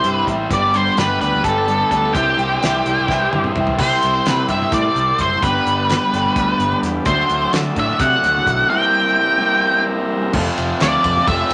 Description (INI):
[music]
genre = psychedelic rock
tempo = 256 BPM (eighths)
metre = 7/8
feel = straight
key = unclear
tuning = A4 = 439 Hz
[part]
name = octave-fuzz lead guitar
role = melody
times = 0.0-11.5 s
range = G4 to G5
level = -19 LUFS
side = equal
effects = distortion
[part]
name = overdriven combo organ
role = sustained chords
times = 0.0-11.5 s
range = F4 to C6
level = -29 LUFS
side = equal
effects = none
[part]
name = crunchy overdriven guitar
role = riff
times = 0.0-11.5 s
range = F2 to G4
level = -23 LUFS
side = equal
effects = none
[part]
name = overdriven picked electric bass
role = bass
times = 0.0-11.5 s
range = F1 to D3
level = -27 LUFS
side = equal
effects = none
[part]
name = damped 70s drum kit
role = drums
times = 0.0-11.5 s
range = crash cymbal, hi-hat, kick drum, ride cymbal, snare drum, toms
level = -26 LUFS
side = equal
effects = none
[part]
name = congas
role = percussion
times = 0.4-11.3 s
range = none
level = -32 LUFS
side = equal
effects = none
[sound]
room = wet studio reverb, RT60 0.7 s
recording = none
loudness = -17 LUFS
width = mono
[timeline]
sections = 0.0-3.8 A section; 3.8-10.3 B section; 10.3-11.5 C section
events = drum fill 3.1-3.8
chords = 0.0 C; 0.5 G; 2.1 C; 5.4 G; 7.1 Dadd9; 8.7 C7; 10.3 F